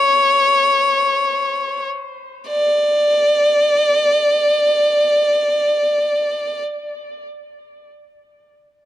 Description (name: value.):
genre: pop.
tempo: free time.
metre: none.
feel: none.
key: unclear.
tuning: A4 = 442 Hz.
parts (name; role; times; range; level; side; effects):
clear violin; melody; 0.0-6.6 s; C#5 to D5; -14 LUFS; equal; tape echo.
room: light reverb.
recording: dry, close 1970s-style studio recording.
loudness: -14 LUFS.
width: side -13 dB against mid.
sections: 0.0-2.5 A section; 2.5-7.6 B section.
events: slowing down 0.0-2.5.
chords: none.